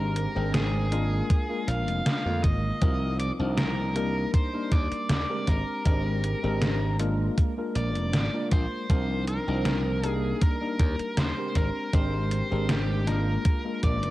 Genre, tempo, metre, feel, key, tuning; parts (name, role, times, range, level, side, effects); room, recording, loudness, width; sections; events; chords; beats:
vaporwave; 79 BPM; 4/4; straight; A4 = 440 Hz
biting lead guitar; melody; 0.0-14.1 s; G4 to F5; -33 LUFS; equal; overdrive, tape echo
tine electric piano; accompaniment; 0.0-14.1 s; D3 to G5; -31 LUFS; equal; medium stereo tremolo, analog chorus
glassy slap bass; bass; 0.0-14.1 s; F1 to F2; -28 LUFS; equal
detuned 8-bit digital drum machine; drums; 0.2-14.1 s; hi-hat, snare drum; -30 LUFS; equal; overdrive, gated reverb
electronic kick drum; drums; 1.3-14.0 s; -23 LUFS; equal; overdrive
light reverb; cassette tape; -24 LUFS; side -16 dB against mid
0.0-14.1 A section
0.0 Abmaj9#11; 1.3 Bb7; 2.8 Cm11; 4.3 Ebmaj7; 5.5 Abmaj9#11; 7.4 Bb7; 8.9 Cm11; 10.4 Ebmaj7; 11.6 Abmaj9#11; 13.5 Bb7
0.54 1.30 2.06 | 2.82 3.58 4.34 5.10 | 5.86 6.62 7.38 8.14 | 8.90 9.66 10.42 11.18 | 11.94 12.70 13.46